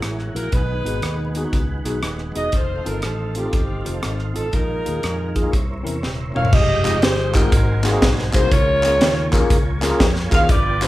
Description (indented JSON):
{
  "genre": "uptempo gospel",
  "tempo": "120 BPM",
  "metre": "4/4",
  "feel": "swing 65% on 8ths",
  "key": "unclear",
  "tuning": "A4 = 440 Hz",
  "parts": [
    { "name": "bright saxophone section", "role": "melody", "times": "0.0-10.9 s", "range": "C4 to F5", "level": "-22 LUFS", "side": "equal", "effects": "none" },
    { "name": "tonewheel organ", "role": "sustained chords", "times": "0.0-10.9 s", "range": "D#3 to G5", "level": "-31 LUFS", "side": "right 2 dB", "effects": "slow rotary speaker, chorus vibrato" },
    { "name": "fingered electric bass", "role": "bass", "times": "0.0-10.9 s", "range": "D#1 to F2", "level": "-24 LUFS", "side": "equal", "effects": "none" },
    { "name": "crisp fusion drum kit", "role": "drums", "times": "0.0-10.9 s", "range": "crash cymbal, hi-hat, kick drum, rim click, snare drum, toms", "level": "-19 LUFS", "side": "equal", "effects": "none" },
    { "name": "tine electric piano", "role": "accompaniment", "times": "0.3-10.9 s", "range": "G2 to C5", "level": "-25 LUFS", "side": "left 2 dB", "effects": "medium stereo tremolo" },
    { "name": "group handclap", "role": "percussion", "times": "6.8-10.9 s", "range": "none", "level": "-29 LUFS", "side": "left 1 dB", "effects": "none" }
  ],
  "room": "light reverb",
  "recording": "band playing live in one room, vinyl crackle",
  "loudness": "-17 LUFS",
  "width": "side -16 dB against mid",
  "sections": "0.0-6.5 A section; 6.5-10.9 B section",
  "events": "drum fill 6.0-6.5",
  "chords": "0.0 Gb9; 0.5 B6; 2.5 F7; 4.5 Bb7sus4; 5.5 C7b9; 6.5 Fm9; 7.5 Ab9; 8.5 Db6"
}